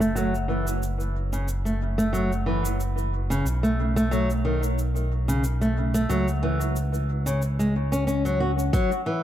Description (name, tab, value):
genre	organic downtempo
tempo	91 BPM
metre	4/4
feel	swing 54% on 16ths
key	F# minor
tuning	A4 = 441 Hz
part	flamenco guitar	arpeggios	0.0-9.2 s	C#3 to F#4	-25 LUFS	equal	low-pass filter, analog delay
part	smooth synth bass	bass	0.0-8.7 s	F#1 to C#2	-26 LUFS	equal	sidechain pumping
part	electronic shaker and hi-hat	drums	0.0-9.0 s	none	-39 LUFS	right 1 dB	none
part	electronic kick drum	drums	8.7-8.9 s	none	-24 LUFS	equal	none
room	moderate spring reverb, RT60 2.3 s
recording	echo-heavy mix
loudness	-22 LUFS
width	side -12 dB against mid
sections	0.0-8.7 A section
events	filter sweep on nylon-string guitar 0.0-8.7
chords	0.0 F#m; 3.5 N.C.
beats	0.16 | 0.82 1.48 2.14 2.80 | 3.46 4.12 4.78 5.44 | 6.09 6.75 7.41 8.07 | 8.73